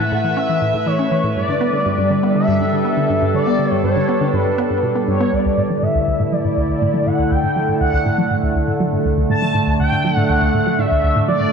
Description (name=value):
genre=ambient, sequencer-driven space music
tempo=121 BPM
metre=4/4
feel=straight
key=unclear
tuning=A4 = 437 Hz
part: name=expressive synth lead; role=melody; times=0.0-11.5 s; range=B4 to A5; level=-20 LUFS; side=equal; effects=ensemble chorus, tape echo
part: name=evolving wavetable pad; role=sustained chords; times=0.0-11.5 s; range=D3 to E5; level=-19 LUFS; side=right 1 dB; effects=chorus, built-in reverb
part: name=resonant blip pluck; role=riff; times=0.0-11.5 s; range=D2 to C#4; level=-20 LUFS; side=equal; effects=chorus, tape echo
part: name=wind-like tuned noise texture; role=texture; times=0.2-5.3 s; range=A4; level=-41 LUFS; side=right 3 dB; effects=none
room=wet plate reverb, RT60 2.9 s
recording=cassette tape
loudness=-15 LUFS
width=side -6 dB against mid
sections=0.0-5.3 A section; 5.3-11.5 B section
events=filter sweep on synth arpeggio sound 5.3-11.5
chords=0.0 A; 1.4 Gadd9; 5.3 D